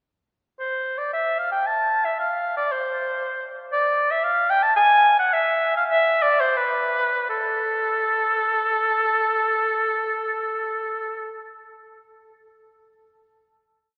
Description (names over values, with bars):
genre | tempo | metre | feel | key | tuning
classical, baroque-style fantasia for unaccompanied oboe | 79-118 BPM | 3/4 | rubato | A minor | A4 = 440 Hz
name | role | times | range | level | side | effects
clear oboe | solo | 0.6-11.5 s | A4 to A5 | -22 LUFS | equal | none
room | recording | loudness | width
wet cathedral reverb, RT60 4.4 s | heard from further back in the room | -22 LUFS | mono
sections
0.6-7.3 A section; 7.3-11.5 final note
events
slowing down 2.9-7.3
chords
none